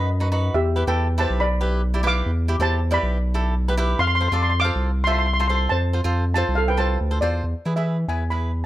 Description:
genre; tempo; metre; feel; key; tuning
calypso; 139 BPM; 4/4; swing 54% on 16ths; unclear; A4 = 440 Hz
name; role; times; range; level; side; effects
steel pan; melody; 0.0-8.6 s; G4 to D6; -23 LUFS; equal; none
cavaquinho; accompaniment; 0.0-8.5 s; D#4 to D5; -28 LUFS; right 1 dB; plate reverb
saturated sub bass; bass; 0.0-8.7 s; B1 to E3; -21 LUFS; equal; none
room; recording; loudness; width
light reverb; none; -19 LUFS; side -14 dB against mid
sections
0.0-7.4 A section; 7.4-8.7 B section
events
none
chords
0.0 B; 0.5 Em7; 4.0 F; 7.4 E

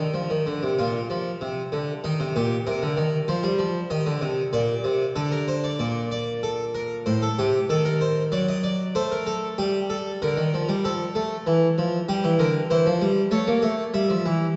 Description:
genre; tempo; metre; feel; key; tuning
classical, baroque-style two-part invention for harpsichord; 96 BPM; 4/4; straight; Bb major; A4 = 440 Hz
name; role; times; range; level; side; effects
harpsichord; solo; 0.0-14.6 s; A2 to E5; -24 LUFS; equal; none
room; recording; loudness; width
wet concert hall reverb, RT60 2.2 s; recorded in a church or concert hall, nothing above 7.9 kHz; -24 LUFS; mono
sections
0.8-5.8 A section; 5.8-14.6 B section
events
none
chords
0.0 Bb; 2.0 Cm7; 3.3 F5; 4.5 Bb; 5.8 Bbmaj7; 7.1 Am7b5; 8.3 D7/F#; 9.6 Gm; 10.8 Fmaj7; 12.1 Em7b5; 13.3 A7

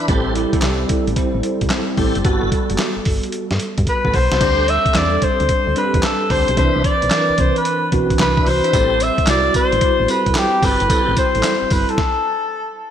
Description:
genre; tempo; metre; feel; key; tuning
R&B, new jack swing; 111 BPM; 4/4; swing 66% on 16ths; A dorian; A4 = 439 Hz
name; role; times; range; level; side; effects
bell-like tine electric piano; accompaniment; 0.0-12.0 s; E3 to C5; -21 LUFS; right 2 dB; ensemble chorus
tonewheel organ; stabs; 0.0-11.2 s; B3 to C5; -26 LUFS; left 1 dB; overdrive, chorus vibrato, slow rotary speaker
solid FM bass; bass; 0.1-11.9 s; F#1 to G2; -22 LUFS; equal; none
dusty soul sampler-style drum kit; drums; 0.1-12.1 s; crash cymbal, handclaps, hi-hat, kick drum, snare drum, tambourine; -20 LUFS; equal; gated reverb
breathy alto saxophone; melody; 3.9-12.8 s; G4 to E5; -17 LUFS; left 2 dB; none
room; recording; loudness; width
moderate lush hall reverb, RT60 2.2 s; bright 1980s-style digital production; -14 LUFS; side -9 dB against mid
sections
0.0-4.4 A section; 4.4-12.9 B section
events
drum fill 3.9-4.4; stop 12.0-12.9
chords
0.1 Am7; 2.2 Gmaj9; 4.4 D7sus4; 6.6 Cmaj9; 8.7 Am7

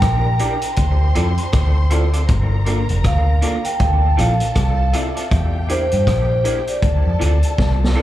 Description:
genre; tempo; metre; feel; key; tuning
lovers rock reggae; 79 BPM; 4/4; swing 59% on 16ths; D minor; A4 = 440 Hz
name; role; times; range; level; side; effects
vibraphone with soft mallets; melody; 0.0-7.8 s; C5 to G5; -22 LUFS; right 1 dB; tape echo, slapback echo
warm studio string section; second line; 0.0-8.0 s; G4 to C6; -30 LUFS; left 2 dB; dub echo, slapback echo
vintage muted fingered electric bass; bass; 0.0-7.9 s; F1 to G2; -17 LUFS; equal; none
vintage drum kit; drums; 0.0-8.0 s; hi-hat, kick drum, rim click, snare drum; -21 LUFS; equal; none
mellow tine electric piano; accompaniment; 0.4-8.0 s; Bb3 to Bb4; -28 LUFS; left 1 dB; medium stereo tremolo, dub echo, slapback echo
electric guitar through a small old amp; stabs; 0.4-8.0 s; Bb3 to D5; -30 LUFS; right 3 dB; ensemble chorus, dub echo, slapback echo
room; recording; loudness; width
studio ambience; live gig heard through the venue's PA, club reverb; -15 LUFS; side -14 dB against mid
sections
0.0-8.0 A section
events
drum fill 7.6-8.0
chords
0.0 Em7b5; 0.8 Dm7; 2.3 Gm7; 3.8 Dm7; 5.3 Em7b5; 6.8 Dm7

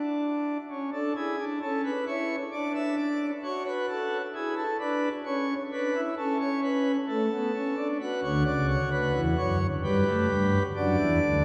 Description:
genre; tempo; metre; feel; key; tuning
classical, baroque-style 3-part fugue for pipe organ; 66 BPM; 4/4; straight; D major; A4 = 439 Hz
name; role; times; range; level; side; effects
pipe organ, principal chorus; solo; 0.0-11.4 s; C#2 to E5; -28 LUFS; equal; none
room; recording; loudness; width
wet cathedral reverb, RT60 6.2 s; heard from further back in the room; -28 LUFS; mono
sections
0.0-11.4 A section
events
none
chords
0.0 N.C.; 0.7 A/C#; 2.5 D; 4.3 E7; 6.2 A/C#; 8.0 D; 9.8 G

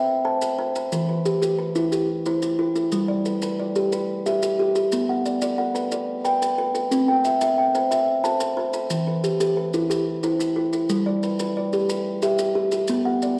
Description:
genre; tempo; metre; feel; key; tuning
southern african traditional, mbira-style interlocking cycle; 120 BPM (dotted quarters); 12/8; straight; G major; A4 = 440 Hz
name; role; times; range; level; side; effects
kalimba; arpeggios; 0.0-13.4 s; E3 to A5; -23 LUFS; equal; none
maracas; percussion; 0.4-13.4 s; none; -39 LUFS; equal; none
room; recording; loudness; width
wet recital hall reverb, RT60 1.6 s; worn, warbling old tape, cassette tape, warbly pitch drift; -23 LUFS; mono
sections
0.0-10.9 A section; 10.9-13.4 B section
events
none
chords
0.0 C; 0.9 Em; 2.9 G; 4.9 Bm; 6.9 C; 8.9 Em; 10.9 G; 12.9 Bm

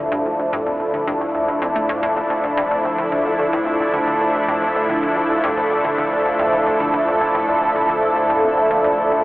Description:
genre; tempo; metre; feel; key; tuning
ambient, sequencer-driven space music; 110 BPM; 4/4; straight; D minor; A4 = 439 Hz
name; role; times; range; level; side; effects
lush unison pad; sustained chords; 0.0-9.2 s; F3 to A4; -17 LUFS; equal; chorus, phaser
hollow square pluck; riff; 0.0-9.2 s; D2 to A3; -27 LUFS; equal; chorus, analog delay
room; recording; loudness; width
wet huge ambient reverb, RT60 8.2 s; telephone sound; -16 LUFS; side -18 dB against mid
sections
0.0-9.2 A section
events
none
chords
0.0 Dmadd9

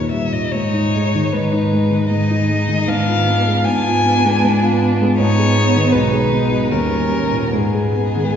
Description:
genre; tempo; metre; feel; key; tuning
classical, slow romantic movement for piano quartet; 77 BPM; 3/4; uneven beats, rubato; G# minor; A4 = 439 Hz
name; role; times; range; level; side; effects
warm violin; melody; 0.0-8.4 s; G#4 to G#5; -20 LUFS; left 3 dB; none
rich violin; second line; 0.0-8.4 s; B3 to D#4; -25 LUFS; left 2 dB; none
warm cello; second line; 0.0-8.4 s; G3 to B3; -23 LUFS; right 5 dB; none
dark grand piano; accompaniment; 0.0-8.4 s; B1 to G#4; -17 LUFS; equal; none
room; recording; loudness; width
wet church reverb, RT60 2.7 s; nothing above 7.8 kHz; -14 LUFS; side -8 dB against mid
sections
0.0-8.4 A section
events
none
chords
0.0 D#; 0.5 G#m; 2.9 G#dim7; 5.2 G#m; 5.9 G#m/B; 6.7 D#7; 7.5 G#m

